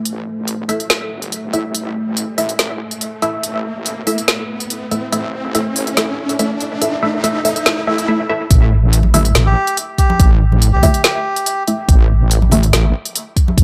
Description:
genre	deep dubstep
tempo	142 BPM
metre	4/4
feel	half-time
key	unclear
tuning	A4 = 440 Hz
part	deep dark ambient pad	sustained chords	0.0-8.1 s	A3	-30 LUFS	equal	chorus, built-in reverb
part	riser	sound effects	0.1-8.1 s	none	-28 LUFS	equal	none
part	wobble bass	bass	0.1-13.6 s	G1 to C2	-18 LUFS	equal	chorus, high-pass filter
part	deep house drum kit	drums	0.1-13.6 s	hi-hat, snare drum	-20 LUFS	equal	studio ambience
part	filtered dub chord stab	stabs	0.7-12.6 s	A3 to E5	-22 LUFS	equal	phaser, lush chorus, dub echo
part	electronic kick drum	drums	8.5-13.6 s	none	-14 LUFS	equal	studio ambience
part	congas	percussion	9.0-13.6 s	none	-23 LUFS	equal	none
part	melodica	melody	9.5-11.6 s	G4	-23 LUFS	equal	dub echo
room	light reverb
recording	none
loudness	-16 LUFS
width	mono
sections	0.0-8.5 A section; 8.5-13.6 B section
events	build-up 0.0-8.5; riser 0.1-8.1; drop 8.5-13.6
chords	0.0 A5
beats	| 0.06 0.48 0.90 1.32 | 1.75 2.17 2.59 3.01 | 3.44 3.86 4.28 4.70 | 5.13 5.55 5.97 6.39 | 6.82 7.24 7.66 8.08 | 8.51 8.93 9.35 9.77 | 10.20 10.62 11.04 11.46 | 11.89 12.31 12.73 13.15 | 13.58

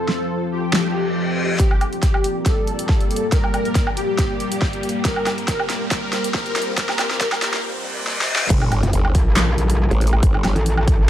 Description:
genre	heavy wobble dubstep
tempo	139 BPM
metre	4/4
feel	swing 53% on 16ths, half-time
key	G minor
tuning	A4 = 439 Hz
part	soft supersaw	melody	0.0-7.6 s	G4 to Bb4	-25 LUFS	left 1 dB	ensemble chorus, digital delay
part	lush unison pad	sustained chords	0.0-11.1 s	F3 to D5	-29 LUFS	equal	chorus, phaser, sidechain pumping
part	deep dark ambient pad	texture	0.0-7.6 s	F3 to A4	-29 LUFS	left 2 dB	chorus, built-in reverb, sidechain pumping
part	big-room dance drum kit	drums	0.1-11.0 s	crash cymbal, handclaps, hi-hat, snare drum, woodblock	-23 LUFS	equal	overdrive, high-pass filter on snare, studio reverb, high-pass filter on hats, high-pass filter on perc, high-pass filter on cymbals
part	reverse cymbal, riser and sub drop	sound effects	0.9-10.2 s	none	-28 LUFS	left 1 dB	none
part	electronic kick drum	drums	1.6-11.0 s	none	-18 LUFS	equal	overdrive, studio reverb
part	growl bass	bass	8.5-10.5 s	G1 to A1	-18 LUFS	equal	chorus, overdrive
part	metallic wobble bass	bass	8.8-11.1 s	F1 to Bb1	-18 LUFS	equal	distortion, chorus, overdrive
room	light reverb, digital ambience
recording	dark, warm production, high-pass filter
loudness	-17 LUFS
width	side -11 dB against mid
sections	0.0-1.6 A section; 1.6-8.5 B section; 8.5-11.1 C section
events	filter sweep on drum 0.0-1.6; reverse cymbal 0.9-1.6, 7.6-8.5; build-up 1.6-8.5; drum fill 1.6-7.6, 8.1-8.5; riser 1.6-8.5; filter sweep 1.6-8.5; drop 8.5-11.1; impact 8.5-10.2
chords	0.0 Fadd9; 1.6 Gm; 8.5 Gmadd9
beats	0.30 0.73 1.16 | 1.59 2.03 2.46 2.89 | 3.32 3.75 4.18 4.62 | 5.05 5.48 5.91 6.34 | 6.78 7.21 7.64 8.07 | 8.50 8.93 9.37 9.80 | 10.23 10.66 11.09

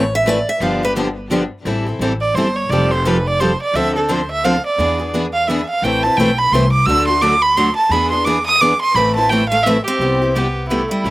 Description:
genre	acoustic string swing (jazz manouche)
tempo	173 BPM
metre	3/4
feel	swing 60% on 8ths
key	A minor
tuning	A4 = 440 Hz
part	picked steel-string acoustic guitar	melody	0.0-0.9, 9.5-11.1 s	G3 to F5	-19 LUFS	equal	slapback echo
part	picked steel-string acoustic guitar	accompaniment	0.0-11.1 s	C3 to B4	-20 LUFS	left 2 dB	slapback echo
part	picked steel-string acoustic guitar	accompaniment	0.0-11.1 s	C3 to B4	-22 LUFS	right 2 dB	none
part	upright bass	bass	0.0-11.1 s	F1 to E2	-22 LUFS	equal	none
part	clear violin	second line	2.2-11.1 s	E4 to E6	-16 LUFS	right 2 dB	none
room	little or no reverb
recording	recorded outdoors, with no room sound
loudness	-14 LUFS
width	side -18 dB against mid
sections	0.0-1.7 A section; 1.7-10.0 A section; 10.0-11.1 B section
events	steel-string acoustic guitar solo 0.0-1.7; violin solo 1.7-10.0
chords	0.0 Amadd9; 0.6 G7; 1.7 Am7; 2.7 Fadd9; 3.7 Dm7; 4.8 E7; 5.8 Amadd9; 6.9 D; 7.9 E7; 9.0 Amadd9; 10.0 Cmaj7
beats	0.27 | 0.61 0.96 1.31 | 1.66 2.01 2.36 | 2.70 3.05 3.40 | 3.75 4.10 4.44 | 4.79 5.14 5.49 | 5.83 6.18 6.53 | 6.88 7.22 7.57 | 7.92 8.26 8.61 | 8.96 9.30 9.65 | 10.00 10.35 10.69 | 11.04

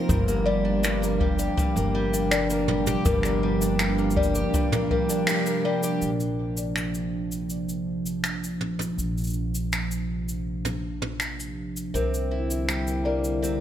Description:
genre	folktronica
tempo	81 BPM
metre	4/4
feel	straight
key	Bb major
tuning	A4 = 440 Hz
part	warbly tape-like pad	sustained chords	0.0-13.6 s	C3 to E4	-29 LUFS	right 1 dB	chorus, built-in reverb
part	picked twelve-string acoustic guitar	arpeggios	0.0-6.6, 11.9-13.6 s	G2 to Bb4	-27 LUFS	equal	tape echo
part	upright bass	bass	0.1-13.6 s	G1 to C2	-30 LUFS	equal	none
part	jazz brush drum kit	drums	0.1-13.6 s	cabasa, finger snaps, toms	-30 LUFS	right 1 dB	none
part	kick drum	drums	0.1-5.1 s	none	-27 LUFS	equal	none
part	marimba with soft mallets	second line	0.5-6.0, 11.9-13.4 s	Bb4 to D5	-31 LUFS	left 4 dB	ping-pong delay
room	light reverb, studio reverb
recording	none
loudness	-23 LUFS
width	side -10 dB against mid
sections	0.0-6.0 A section; 6.0-13.6 B section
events	band accent 5.3-5.6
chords	0.1 Gm; 6.0 Bb; 11.9 C7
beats	| 0.09 0.83 1.57 2.31 | 3.06 3.80 4.54 5.28 | 6.02 6.76 7.50 8.24 | 8.98 9.72 10.46 11.20 | 11.94 12.69 13.43

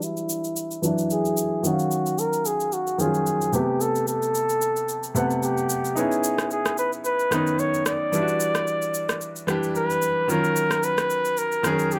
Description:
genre	amapiano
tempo	111 BPM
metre	4/4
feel	swing 55% on 16ths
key	unclear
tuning	A4 = 440 Hz
part	trumpet with bucket mute	melody	0.0-12.0 s	E4 to D5	-27 LUFS	equal	low-pass filter
part	bright baby grand piano	accompaniment	0.0-12.0 s	C3 to F#5	-28 LUFS	equal	low-pass filter
part	electronic shaker and rim click	drums	0.0-12.0 s	none	-32 LUFS	equal	none
room	moderate studio reverb, RT60 0.6 s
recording	none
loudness	-24 LUFS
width	mono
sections	0.0-12.0 A section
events	filter sweep 0.0-12.0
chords	0.0 Em9; 1.6 D#m9; 3.5 Am9; 6.0 C#m9; 8.1 Em9; 10.3 D#m9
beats	0.02 0.56 1.10 | 1.64 2.18 2.72 3.27 | 3.81 4.35 4.89 5.43 | 5.97 6.51 7.05 7.59 | 8.13 8.67 9.21 9.75 | 10.29 10.83 11.37 11.91

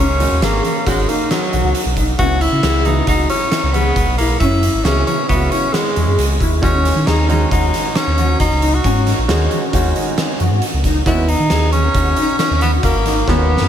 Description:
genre	progressive instrumental, band music in an uneven meter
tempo	135 BPM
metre	5/4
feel	straight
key	unclear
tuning	A4 = 437 Hz
part	clear tenor saxophone	melody	0.0-13.7 s	F#3 to F#4	-18 LUFS	equal	diffuse ambient delay
part	warm concert grand piano	arpeggios	0.0-13.5 s	B3 to G#4	-22 LUFS	left 2 dB	ensemble chorus
part	sub bass with octave	bass	0.0-13.7 s	G#1 to D#3	-17 LUFS	equal	none
part	bright concert grand piano	accompaniment	0.2-13.4 s	C#3 to F#4	-25 LUFS	right 3 dB	none
part	oversized low-tuned drum kit	drums	0.2-13.7 s	hi-hat, kick drum, snare drum	-20 LUFS	equal	none
room	moderate huge ambient reverb, RT60 4.6 s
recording	dreamy mix soaked in reverb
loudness	-13 LUFS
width	side -9 dB against mid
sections	0.0-13.7 A section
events	drum fill 13.3-13.7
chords	0.0 G#m11; 2.2 C#m7; 6.6 D#m7; 11.1 G#m11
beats	0.42 0.86 1.31 1.75 | 2.19 2.63 3.08 3.52 3.96 | 4.41 4.85 5.30 5.74 6.18 | 6.63 7.07 7.52 7.96 8.40 | 8.85 9.29 9.73 10.18 10.62 | 11.06 11.51 11.95 12.39 12.84 | 13.28

